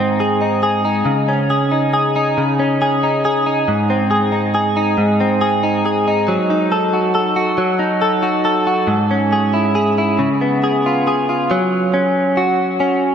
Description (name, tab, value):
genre	pop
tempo	46 BPM (dotted quarters)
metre	6/8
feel	straight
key	unclear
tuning	A4 = 440 Hz
part	direct-recorded clean electric guitar	solo	0.0-13.1 s	G#2 to A4	-14 LUFS	equal	analog chorus, analog delay
room	wet huge ambient reverb, RT60 4.0 s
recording	dreamy mix soaked in reverb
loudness	-14 LUFS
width	side -8 dB against mid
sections	0.0-11.5 A section; 11.5-13.1 B section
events	none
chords	0.0 G#; 1.1 C#sus2; 3.7 G#; 6.3 D#dim; 8.9 C#m/G#; 10.2 C#7; 11.5 F#5